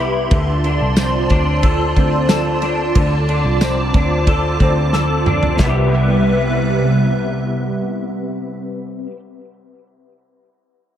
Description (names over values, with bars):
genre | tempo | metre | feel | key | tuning
dream pop | 91 BPM | 4/4 | straight | C major | A4 = 440 Hz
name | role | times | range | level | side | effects
hollow soft pad | sustained chords | 0.0-8.6 s | C3 to D6 | -20 LUFS | right 2 dB | ensemble chorus
electric guitar through a small old amp | arpeggios | 0.0-9.2 s | C3 to A4 | -20 LUFS | left 2 dB | ensemble chorus, dub echo
vintage muted picked electric bass | bass | 0.0-8.6 s | C2 to D2 | -19 LUFS | equal | none
loose indie drum kit | drums | 0.3-5.7 s | kick drum, ride cymbal, snare drum, tambourine, toms | -18 LUFS | equal | none
room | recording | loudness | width
light reverb, small room ambience | echo-heavy mix | -14 LUFS | side -10 dB against mid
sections
0.0-5.6 A section; 5.6-8.2 B section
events
drum fill 4.9-5.6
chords
0.3 Dm7; 5.6 Cmaj7